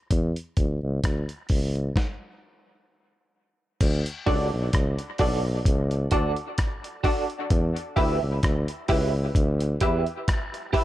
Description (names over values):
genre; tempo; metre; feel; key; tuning
dub reggae; 65 BPM; 4/4; swing 55% on 16ths; D major; A4 = 440 Hz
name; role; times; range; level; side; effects
warm tuba; bass; 0.1-10.0 s; B1 to E2; -25 LUFS; equal; none
dusty soul sampler-style drum kit; drums; 0.1-10.8 s; crash cymbal, hi-hat, kick drum, rim click, snare drum; -25 LUFS; equal; none
electric guitar at the edge of break-up; accompaniment; 4.3-10.8 s; F#4 to E5; -30 LUFS; right 6 dB; tremolo, dub echo
filtered dub chord stab; stabs; 4.3-10.8 s; D4 to E5; -31 LUFS; left 3 dB; chorus, dub echo
room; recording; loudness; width
light reverb, digital ambience; none; -23 LUFS; side -15 dB against mid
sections
0.0-3.8 A section; 3.8-10.8 B section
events
break 0.0-3.8; stop 2.0-3.8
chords
0.1 C#m; 3.8 D; 7.5 Em